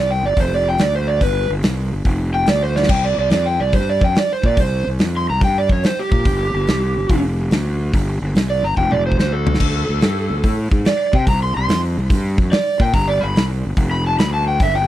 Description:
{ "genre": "blues rock power trio and southern rock", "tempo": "143 BPM", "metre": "4/4", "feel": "swing 67% on 8ths", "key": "unclear", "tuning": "A4 = 437 Hz", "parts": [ { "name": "overdriven slide guitar", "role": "melody", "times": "0.0-14.9 s", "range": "G4 to C6", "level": "-20 LUFS", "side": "right 1 dB", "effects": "none" }, { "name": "fuzz fingered electric bass", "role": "bass", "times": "0.0-14.9 s", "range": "F1 to C3", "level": "-20 LUFS", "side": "equal", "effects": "overdrive" }, { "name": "big rock drum kit", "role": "drums", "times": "0.4-14.7 s", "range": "crash cymbal, hi-hat, kick drum, snare drum, splash cymbal, toms", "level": "-19 LUFS", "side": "equal", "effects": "none" } ], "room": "studio ambience", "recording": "dry, close 1970s-style studio recording", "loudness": "-15 LUFS", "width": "side -13 dB against mid", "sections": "0.0-14.9 A section", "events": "electric slide guitar solo 0.0-14.9; drum fill 2.7, 8.8-9.6", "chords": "0.4 Fsus2; 0.8 Csus2/D; 1.2 Gadd11; 2.1 Fsus2; 2.5 Csus2/D; 2.9 C5; 6.3 Gsus4; 7.1 N.C.; 7.9 Gsus4; 8.8 Fsus2; 9.2 D5; 11.3 C5; 12.9 Gadd11; 13.8 F; 14.2 Gadd9/D" }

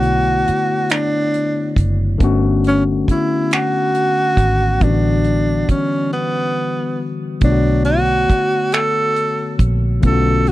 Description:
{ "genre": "slow six-eight R&B", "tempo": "46 BPM (dotted quarters)", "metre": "6/8", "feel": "straight", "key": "B minor", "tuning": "A4 = 445 Hz", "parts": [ { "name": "warm tenor saxophone", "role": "melody", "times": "0.0-10.5 s", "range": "B3 to A4", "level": "-18 LUFS", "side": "right 1 dB", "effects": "tape echo" }, { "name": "overdriven tine electric piano", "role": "accompaniment", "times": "0.0-10.5 s", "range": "D3 to C#5", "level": "-20 LUFS", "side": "left 4 dB", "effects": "none" }, { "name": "vintage muted fingered electric bass", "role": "bass", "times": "0.0-10.5 s", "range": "F#1 to B1", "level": "-17 LUFS", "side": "right 1 dB", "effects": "none" }, { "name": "damped 70s drum kit", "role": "drums", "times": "0.0-10.5 s", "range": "finger snaps, hi-hat, kick drum", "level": "-16 LUFS", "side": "right 1 dB", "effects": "none" } ], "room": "light reverb", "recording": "dry, close 1970s-style studio recording", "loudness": "-14 LUFS", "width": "side -16 dB against mid", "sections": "0.0-10.5 A section", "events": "break 6.1-7.4", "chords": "0.0 Bm9; 2.2 Gmaj9#11; 4.8 A13sus4; 7.4 Bm9" }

